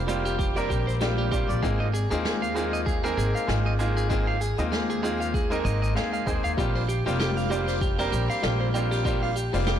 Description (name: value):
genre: sunset chillout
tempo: 97 BPM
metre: 4/4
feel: swing 57% on 16ths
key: Bb mixolydian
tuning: A4 = 439 Hz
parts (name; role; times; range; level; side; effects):
- bright grand piano; accompaniment; 0.0-9.8 s; G3 to Bb4; -28 LUFS; equal; auto-pan, digital delay
- upright bass; bass; 0.0-9.8 s; F1 to Eb2; -28 LUFS; equal; tube saturation
- clean electric guitar; arpeggios; 0.1-9.8 s; G4 to F5; -30 LUFS; right 3 dB; digital delay
- jazz brush drum kit; drums; 0.1-9.8 s; hi-hat, shaker, snare drum; -35 LUFS; left 2 dB; soft clipping on snare
- electronic kick drum; drums; 0.4-9.2 s; none; -29 LUFS; equal; overdrive
room: light reverb, studio ambience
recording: blown-out, overdriven recording, overdrive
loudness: -23 LUFS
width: side -10 dB against mid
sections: 0.0-9.8 A section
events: none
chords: 0.0 Bb69; 1.6 Ab6; 6.6 Bb69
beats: 0.39 1.01 | 1.63 2.25 2.87 3.48 | 4.10 4.72 5.34 5.96 | 6.58 7.20 7.81 8.43 | 9.05 9.67